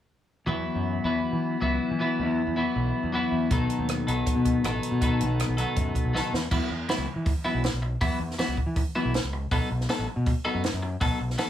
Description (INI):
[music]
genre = indie rock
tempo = 160 BPM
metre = 4/4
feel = straight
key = unclear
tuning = A4 = 438 Hz
[part]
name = twelve-string electric guitar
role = riff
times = 0.5-11.5 s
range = B2 to A4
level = -27 LUFS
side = left 2 dB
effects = none
[part]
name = growling fingered electric bass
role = bass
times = 0.5-11.5 s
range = A1 to E3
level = -29 LUFS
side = equal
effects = overdrive
[part]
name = compact cocktail drum kit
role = drums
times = 3.5-11.5 s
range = crash cymbal, hi-hat, kick drum, rim click, snare drum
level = -28 LUFS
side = right 1 dB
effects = none
[sound]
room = light reverb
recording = none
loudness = -24 LUFS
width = side -11 dB against mid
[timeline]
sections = 0.5-6.5 A section; 6.5-11.5 B section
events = drum fill 6.1-6.5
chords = 0.5 Esus2; 3.5 B7; 6.3 N.C.; 6.5 Esus2; 9.5 B7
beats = | 0.47 0.85 1.23 1.61 | 1.99 2.37 2.75 3.12 | 3.50 3.88 4.26 4.63 | 5.01 5.39 5.76 6.14 | 6.51 6.89 7.26 7.64 | 8.01 8.39 8.76 9.14 | 9.51 9.88 10.26 10.63 | 11.01 11.38